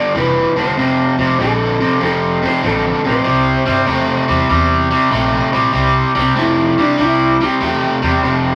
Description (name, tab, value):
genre	electric blues shuffle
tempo	96 BPM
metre	4/4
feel	swing 67% on 8ths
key	C mixolydian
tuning	A4 = 440 Hz
part	electric guitar through a small old amp	melody	0.0-8.6 s	C4 to D5	-22 LUFS	equal	none
part	overdriven semi-hollow guitar	riff	0.0-8.6 s	F2 to A3	-16 LUFS	equal	none
part	upright bass	bass	0.1-8.5 s	F1 to G2	-25 LUFS	equal	none
room	wet small room reverb, RT60 0.5 s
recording	vinyl crackle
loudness	-15 LUFS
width	mono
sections	0.0-5.7 A section; 5.7-8.6 B section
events	clean electric guitar solo 5.7-8.6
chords	0.0 G6; 0.8 F6; 3.3 C6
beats	0.15 | 0.77 1.39 2.01 2.63 | 3.25 3.88 4.50 5.12 | 5.74 6.36 6.99 7.61 | 8.23